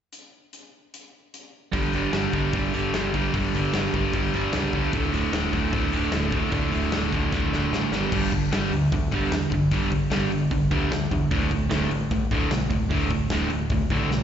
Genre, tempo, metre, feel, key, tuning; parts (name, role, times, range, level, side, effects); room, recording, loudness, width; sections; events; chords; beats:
punk rock; 151 BPM; 4/4; straight; A4 = 436 Hz
big rock drum kit; drums; 0.1-14.2 s; crash cymbal, hi-hat, kick drum, snare drum; -28 LUFS; left 2 dB
distorted electric guitar; riff; 1.7-14.2 s; D2 to G3; -28 LUFS; left 10 dB; distortion, slapback echo
overdriven electric guitar; riff; 1.7-14.2 s; D2 to G3; -26 LUFS; right 7 dB; slapback echo
growling picked electric bass; bass; 1.7-14.2 s; D1 to E2; -30 LUFS; left 1 dB; overdrive
light reverb; live gig heard through the venue's PA, recital hall reverb, nothing above 7.7 kHz; -22 LUFS; side -9 dB against mid
0.1-1.7 A section; 1.7-8.1 B section; 8.1-14.2 C section
drum fill 7.3-8.1
0.1 N.C.; 1.7 G5; 4.9 D5; 7.9 G5; 11.3 D5
| 0.12 0.53 0.93 1.33 | 1.73 2.13 2.54 2.94 | 3.34 3.74 4.14 4.54 | 4.94 5.34 5.74 6.14 | 6.54 6.94 7.34 7.74 | 8.13 8.53 8.93 9.33 | 9.72 10.12 10.52 10.91 | 11.31 11.71 12.11 12.50 | 12.90 13.30 13.70 14.10